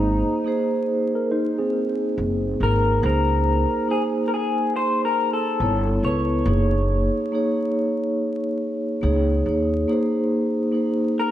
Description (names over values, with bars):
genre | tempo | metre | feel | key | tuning
lo-fi hip hop | 70 BPM | 4/4 | swing 63% on 16ths | unclear | A4 = 439 Hz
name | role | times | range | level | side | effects
electric guitar through a small old amp | melody | 0.0-11.3 s | Eb4 to Db5 | -25 LUFS | left 4 dB | lush chorus, low-pass filter, analog delay
vibraphone with soft mallets | accompaniment | 0.0-11.3 s | Bb3 to Eb5 | -22 LUFS | right 1 dB | low-pass filter
upright bass | bass | 0.0-9.8 s | Gb1 to Eb2 | -22 LUFS | equal | none
mellow tine electric piano | second line | 1.2-2.8 s | C4 to C5 | -27 LUFS | left 1 dB | medium stereo tremolo, low-pass filter, analog delay
room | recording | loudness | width
moderate lush hall reverb, RT60 2.0 s | dreamy mix soaked in reverb, vinyl crackle | -20 LUFS | side -12 dB against mid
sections
0.0-9.9 A section; 9.9-11.3 B section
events
none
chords
0.0 Ab7; 3.0 Db5; 5.6 Gadd9; 6.5 Gbadd9; 9.0 Db5; 9.9 Ab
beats
0.46 1.31 2.17 | 3.03 3.88 4.74 5.60 | 6.46 7.31 8.17 9.03 | 9.88 10.74